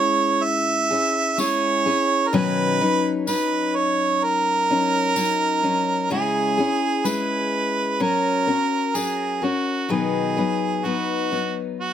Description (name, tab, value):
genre	acoustic folk duo or small band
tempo	64 BPM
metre	4/4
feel	straight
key	B major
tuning	A4 = 439 Hz
part	clear harmonica	second line	0.0-11.9 s	F#4 to E5	-21 LUFS	right 4 dB	none
part	picked steel-string acoustic guitar	accompaniment	0.0-11.9 s	B2 to B4	-23 LUFS	left 4 dB	none
part	tambourine	percussion	1.4-9.2 s	none	-31 LUFS	left 6 dB	none
room	light reverb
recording	close, detailed microphones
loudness	-19 LUFS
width	side -9 dB against mid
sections	0.0-9.9 A section; 9.9-11.9 B section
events	none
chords	0.0 C#m; 2.3 Badd9; 6.1 C#m; 8.0 F#; 9.9 B